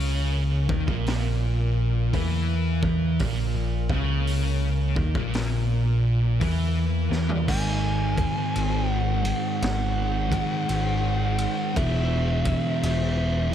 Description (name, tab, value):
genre	stoner and doom metal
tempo	56 BPM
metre	4/4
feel	swing 65% on 8ths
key	unclear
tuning	A4 = 439 Hz
part	organ-like drone	sustained chords	0.0-13.5 s	G#3 to F#5	-39 LUFS	left 1 dB	ensemble chorus, built-in reverb
part	thick fuzz guitar	riff	0.0-13.5 s	E2 to G#3	-28 LUFS	left 8 dB	distortion
part	thick fuzz guitar	riff	0.0-13.5 s	E2 to G#3	-28 LUFS	right 8 dB	distortion
part	overdriven picked electric bass	bass	0.0-13.5 s	E1 to E2	-26 LUFS	equal	none
part	raw garage drum kit	drums	0.0-13.2 s	crash cymbal, hi-hat, kick drum, ride cymbal, snare drum, toms	-31 LUFS	equal	none
part	fuzz lead guitar	melody	7.5-13.5 s	E5 to G#5	-30 LUFS	right 1 dB	wah, distortion, tape echo
room	studio reverb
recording	dark, warm production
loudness	-22 LUFS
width	side -10 dB against mid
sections	0.0-7.5 A section; 7.5-13.5 B section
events	drum fill 6.9-7.5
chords	0.0 A#5; 7.5 G#5; 11.8 E5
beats	1.06 2.13 | 3.20 4.27 5.34 6.41 | 7.48 8.55 9.62 10.69 | 11.76 12.84